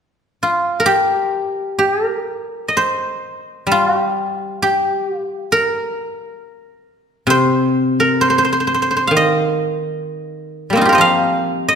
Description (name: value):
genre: chinese traditional, Chinese solo plucked strings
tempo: 65 BPM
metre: 2/4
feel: rubato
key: unclear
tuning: A4 = 440 Hz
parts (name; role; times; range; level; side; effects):
- guzheng; solo; 0.4-11.8 s; C3 to F5; -15 LUFS; equal; none
room: moderate scoring stage reverb, RT60 1.8 s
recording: recorded in a church or concert hall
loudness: -14 LUFS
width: side -7 dB against mid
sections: 0.0-1.8 A section; 1.8-11.8 B section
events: none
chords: none